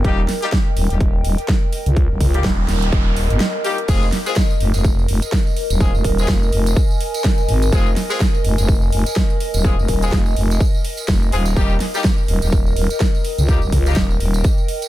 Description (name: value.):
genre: bass house.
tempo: 125 BPM.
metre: 4/4.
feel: swing 58% on 16ths.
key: F minor.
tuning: A4 = 440 Hz.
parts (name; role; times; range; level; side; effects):
bright horn section; stabs; 0.0-14.0 s; G3 to Ab4; -26 LUFS; left 4 dB; sidechain pumping, ping-pong delay.
growling FM bass; bass; 0.0-14.4 s; Eb1 to Db2; -18 LUFS; equal; sidechain pumping.
big-room dance drum kit; drums; 0.0-14.9 s; crash cymbal, hi-hat, snare drum; -25 LUFS; right 2 dB; none.
electronic kick drum; drums; 0.0-14.6 s; none; -17 LUFS; equal; none.
warbly tape-like pad; texture; 0.0-14.9 s; Bb4 to Ab5; -26 LUFS; equal; chorus, built-in reverb, phaser, sidechain pumping.
noise sweep; sound effects; 2.2-3.9 s; none; -29 LUFS; right 2 dB; none.
tambourine; percussion; 3.9-14.9 s; none; -32 LUFS; right 6 dB; none.
room: digital ambience.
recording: none.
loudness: -15 LUFS.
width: side -15 dB against mid.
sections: 0.0-14.9 A section.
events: filter sweep on FM bass 0.0-14.9; noise sweep 2.2-3.9; break 3.4-3.9.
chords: 0.0 Eb; 3.9 Fm; 11.6 Eb.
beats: | 0.04 0.53 1.00 1.49 | 1.97 2.44 2.92 3.40 | 3.88 4.37 4.84 5.33 | 5.80 6.29 6.76 7.25 | 7.72 8.21 8.69 9.16 | 9.64 10.12 10.61 11.09 | 11.56 12.04 12.53 13.01 | 13.48 13.96 14.45.